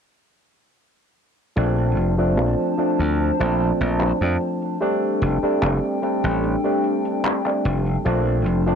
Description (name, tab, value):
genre	vaporwave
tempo	74 BPM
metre	4/4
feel	straight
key	unclear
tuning	A4 = 444 Hz
part	barky tine electric piano	accompaniment	1.6-8.8 s	F3 to D4	-22 LUFS	equal	wide subtle chorus, tape echo
part	warbly tape-like pad	sustained chords	2.0-8.8 s	D4 to A5	-26 LUFS	left 2 dB	chorus, built-in reverb
part	slap bass	bass	1.6-8.8 s	F1 to F2	-21 LUFS	equal	none
part	detuned 8-bit digital drum machine	drums	1.6-8.8 s	handclaps, hi-hat	-27 LUFS	equal	overdrive, low-pass filter on hats, low-pass filter on snare, low-pass filter on room
room	light reverb, digital ambience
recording	dry, gritty hardware recording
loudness	-19 LUFS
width	side -7 dB against mid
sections	1.6-8.8 A section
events	filter sweep on drum 1.6-8.8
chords	1.6 Bbmaj9; 4.8 F69; 8.1 Bbmaj9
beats	| 1.57 2.38 3.19 4.00 | 4.81 5.62 6.44 7.25 | 8.06